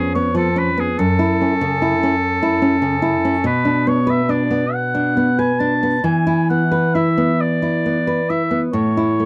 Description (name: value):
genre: romantic duo for oboe and classical guitar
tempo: 43-50 BPM (dotted quarters)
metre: 6/8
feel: rubato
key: unclear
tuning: A4 = 441 Hz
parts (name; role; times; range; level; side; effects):
- clear oboe; melody; 0.0-9.3 s; G#4 to A5; -23 LUFS; equal; none
- nylon-string guitar; accompaniment; 0.0-9.3 s; E#2 to B4; -19 LUFS; equal; none
room: light reverb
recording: dry, close 1970s-style studio recording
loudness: -18 LUFS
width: mono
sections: 0.0-9.3 A section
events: none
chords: 0.0 C#7/E#; 1.0 F#m7; 3.4 Bm; 6.0 E5; 8.7 A